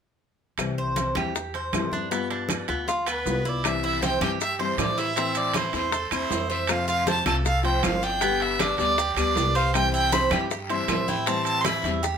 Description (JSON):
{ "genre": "latin, Cuban son and guajira", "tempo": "157 BPM", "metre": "4/4", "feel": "straight", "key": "C major", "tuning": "A4 = 440 Hz", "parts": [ { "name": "nylon-string guitar", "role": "accompaniment", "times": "0.6-12.1 s", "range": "C3 to G4", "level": "-30 LUFS", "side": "left 7 dB", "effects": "none" }, { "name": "upright bass", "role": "bass", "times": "0.6-12.2 s", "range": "G1 to A2", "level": "-31 LUFS", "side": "equal", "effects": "none" }, { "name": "bongos", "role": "percussion", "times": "0.6-12.2 s", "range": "none", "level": "-33 LUFS", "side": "left 8 dB", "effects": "none" }, { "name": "claves", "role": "percussion", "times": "0.6-11.8 s", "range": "none", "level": "-35 LUFS", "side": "right 4 dB", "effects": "none" }, { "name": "congas", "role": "percussion", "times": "0.6-12.2 s", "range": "none", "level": "-34 LUFS", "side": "right 1 dB", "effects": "none" }, { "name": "maracas", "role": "percussion", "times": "0.6-12.2 s", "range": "none", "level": "-37 LUFS", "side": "right 7 dB", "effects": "none" }, { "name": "timbales", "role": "percussion", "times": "0.6-12.0 s", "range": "none", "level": "-32 LUFS", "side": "right 6 dB", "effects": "none" }, { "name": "Cuban tres", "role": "arpeggios", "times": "0.8-12.2 s", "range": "B3 to C5", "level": "-29 LUFS", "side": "right 3 dB", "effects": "none" }, { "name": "clear violin", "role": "melody", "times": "3.1-11.8 s", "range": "B4 to C6", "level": "-26 LUFS", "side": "right 2 dB", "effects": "none" }, { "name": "guiro", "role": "percussion", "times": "3.6-12.2 s", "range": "none", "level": "-36 LUFS", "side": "left 5 dB", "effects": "none" } ], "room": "moderate studio reverb, RT60 0.6 s", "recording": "minimal, uncompressed stereo recording", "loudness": "-22 LUFS", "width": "side -7 dB against mid", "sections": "0.6-3.6 A section; 3.6-12.2 B section", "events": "none", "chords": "0.6 C; 2.1 G7; 3.6 C; 5.2 Am; 6.7 F; 8.2 G; 9.7 C; 11.3 Am7" }